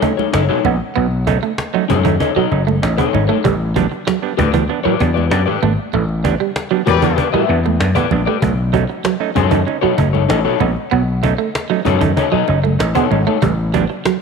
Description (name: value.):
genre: funk.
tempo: 96 BPM.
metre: 4/4.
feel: straight.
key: B mixolydian.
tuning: A4 = 440 Hz.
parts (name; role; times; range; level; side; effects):
electric guitar through a small old amp; accompaniment; 0.0-13.4 s; D#4 to E5; -20 LUFS; left 15 dB; spring reverb.
electric guitar at the edge of break-up; riff; 0.0-14.2 s; D#3 to B3; -20 LUFS; right 11 dB; analog chorus.
overdriven clav; stabs; 0.0-14.0 s; A2 to D#4; -22 LUFS; right 10 dB; none.
cajon; drums; 0.0-14.2 s; none; -22 LUFS; left 1 dB; none.
congas; percussion; 0.0-13.9 s; none; -26 LUFS; right 8 dB; none.
vintage slap bass; bass; 0.3-13.8 s; F#1 to F#2; -17 LUFS; left 2 dB; none.
warm horn section; second line; 6.9-7.3 s; G4 to D5; -21 LUFS; left 12 dB; none.
room: moderate echo chamber reverb, RT60 2.4 s.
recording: 1960s-style stereo with parts hard left and right.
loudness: -14 LUFS.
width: side -5 dB against mid.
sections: 0.0-14.2 A section.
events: band accent 5.9-8.4.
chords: 0.0 B9; 3.4 A9sus4; 8.4 B9; 13.4 A9sus4.